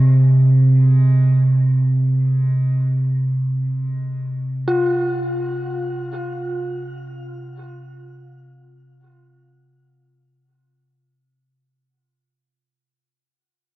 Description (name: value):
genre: dark ambient drone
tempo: free time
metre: none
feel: none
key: unclear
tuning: A4 = 442 Hz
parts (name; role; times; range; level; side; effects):
- dark detuned synth bell; arpeggios; 0.0-11.5 s; F4; -23 LUFS; left 1 dB; chorus, phaser, shimmer reverb, diffuse ambient delay
- deep rumbling drone; drone; 0.0-11.6 s; C3; -16 LUFS; right 1 dB; built-in reverb
room: moderate huge ambient reverb, RT60 7.3 s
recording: worn, warbling old tape, cassette tape, warbly pitch drift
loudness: -16 LUFS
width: side -16 dB against mid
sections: 0.0-11.4 A section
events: fade-out 1.1-11.4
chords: 0.0 F5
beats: free time